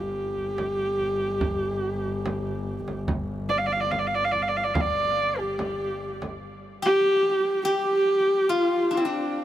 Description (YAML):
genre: mongolian traditional, Mongolian folk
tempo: 72 BPM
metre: 4/4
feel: straight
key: unclear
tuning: A4 = 440 Hz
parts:
  - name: dark horsehead fiddle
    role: melody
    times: 0.0-9.4 s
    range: D4 to F5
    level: -24 LUFS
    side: equal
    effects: none
  - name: rich double bass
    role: drone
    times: 0.0-6.5 s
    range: G1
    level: -34 LUFS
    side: left 1 dB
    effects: none
  - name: frame drum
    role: percussion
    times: 0.4-6.4 s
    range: none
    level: -31 LUFS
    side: right 1 dB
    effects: none
  - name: steel-string zither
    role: second line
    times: 6.8-9.4 s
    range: C4 to G4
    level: -28 LUFS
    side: left 1 dB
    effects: none
room: moderate huge ambient reverb, RT60 6.3 s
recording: none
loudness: -23 LUFS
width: side -12 dB against mid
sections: 0.0-6.4 A section; 6.4-9.4 B section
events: none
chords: none